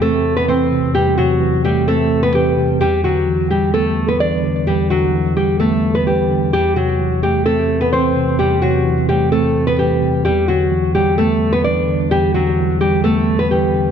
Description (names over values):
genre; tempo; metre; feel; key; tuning
hip hop; 129 BPM; 4/4; half-time; E minor; A4 = 440 Hz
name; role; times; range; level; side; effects
nylon-string guitar; melody; 0.0-13.9 s; F#3 to D5; -16 LUFS; left 1 dB; low-pass filter, ping-pong delay
mellow tine electric piano; accompaniment; 0.0-13.9 s; E2 to C4; -17 LUFS; right 1 dB; medium stereo tremolo, low-pass filter
room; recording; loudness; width
moderate plate reverb, RT60 2.9 s; dreamy mix soaked in reverb; -13 LUFS; side -8 dB against mid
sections
0.0-10.2 A section; 10.2-13.9 A section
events
none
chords
0.0 Am/E; 2.8 Em7; 6.5 Am/E; 10.2 Em7